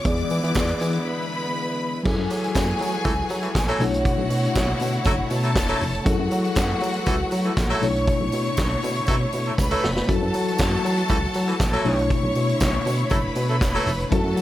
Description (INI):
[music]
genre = disco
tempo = 119 BPM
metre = 4/4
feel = straight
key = unclear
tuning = A4 = 441 Hz
[part]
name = clear studio string section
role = second line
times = 0.0-14.4 s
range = F#4 to D6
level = -28 LUFS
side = left 1 dB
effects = none
[part]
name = mellow tine electric piano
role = accompaniment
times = 0.0-14.4 s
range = B2 to D5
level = -26 LUFS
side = left 2 dB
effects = medium stereo tremolo
[part]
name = clear studio string section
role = sustained chords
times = 0.0-14.4 s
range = D3 to C#5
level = -32 LUFS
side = equal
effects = none
[part]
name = clear horn section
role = stabs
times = 0.0-13.9 s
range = E3 to B4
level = -28 LUFS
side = right 1 dB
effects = none
[part]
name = tambourine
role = percussion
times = 0.0-14.4 s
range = none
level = -40 LUFS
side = right 7 dB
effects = none
[part]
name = solid FM bass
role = bass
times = 0.1-14.4 s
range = E1 to F#3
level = -26 LUFS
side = equal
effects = none
[part]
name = vintage drum kit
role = drums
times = 0.1-14.4 s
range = crash cymbal, handclaps, hi-hat, kick drum, snare drum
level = -25 LUFS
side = equal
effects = none
[sound]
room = light reverb, small room ambience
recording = none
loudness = -20 LUFS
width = side -14 dB against mid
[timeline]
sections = 0.0-2.1 A section; 2.1-14.4 B section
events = break 1.1-2.1; drum fill 9.6-10.1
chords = 0.1 E7; 2.1 F#m9; 3.8 Bm11; 6.1 F#m9; 7.8 Bm11; 10.1 F#m7; 11.9 Bm11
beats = | 0.05 0.55 1.05 1.56 | 2.06 2.56 3.06 3.56 | 4.06 4.56 5.06 5.56 | 6.06 6.56 7.07 7.57 | 8.07 8.57 9.08 9.58 | 10.09 10.59 11.10 11.60 | 12.11 12.61 13.11 13.62 | 14.12